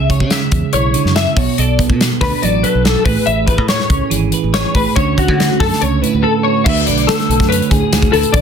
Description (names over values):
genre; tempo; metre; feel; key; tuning
math rock and midwest emo; 142 BPM; 4/4; straight; D lydian; A4 = 439 Hz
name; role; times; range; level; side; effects
clean electric guitar; accompaniment; 0.0-8.4 s; A2 to C#5; -17 LUFS; right 10 dB; none
clean electric guitar; arpeggios; 0.0-8.4 s; F#4 to E5; -17 LUFS; left 6 dB; ensemble chorus, plate reverb
modern bright fingered electric bass; bass; 0.0-8.4 s; G#1 to D3; -18 LUFS; equal; none
modern studio drum kit; drums; 0.1-8.4 s; crash cymbal, hi-hat, kick drum, snare drum; -16 LUFS; left 1 dB; none
room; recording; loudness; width
light reverb; dense, heavily limited modern master; -12 LUFS; side -7 dB against mid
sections
0.0-6.7 A section; 6.7-8.4 B section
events
none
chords
0.0 C#m7; 1.4 Bm7; 3.1 Amaj9; 5.0 Dmaj7; 6.7 D6